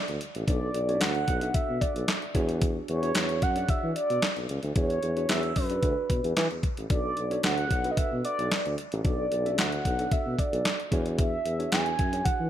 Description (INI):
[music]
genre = early-eighties boogie funk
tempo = 112 BPM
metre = 4/4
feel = straight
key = B dorian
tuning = A4 = 440 Hz
[part]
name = mellow horn-like synth lead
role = melody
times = 0.0-12.5 s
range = B4 to G#5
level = -30 LUFS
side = right 1 dB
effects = chorus, ping-pong delay
[part]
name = tine electric piano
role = accompaniment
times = 0.0-12.5 s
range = C#4 to E5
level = -36 LUFS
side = equal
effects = medium stereo tremolo
[part]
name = warm tuba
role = bass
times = 0.1-12.5 s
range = A1 to E3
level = -31 LUFS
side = equal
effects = none
[part]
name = detuned 8-bit digital drum machine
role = drums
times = 0.1-12.4 s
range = handclaps, hi-hat, kick drum, snare drum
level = -28 LUFS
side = equal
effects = none
[sound]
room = light reverb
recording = bright 1980s-style digital production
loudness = -25 LUFS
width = side -11 dB against mid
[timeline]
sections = 0.0-12.5 A section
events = none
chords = 0.0 Bm9; 2.3 E13; 6.9 Bm7; 10.9 E13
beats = | 0.47 1.01 1.54 2.08 | 2.62 3.15 3.69 4.22 | 4.76 5.29 5.83 6.37 | 6.90 7.44 7.97 8.51 | 9.04 9.58 10.12 10.65 | 11.19 11.72 12.26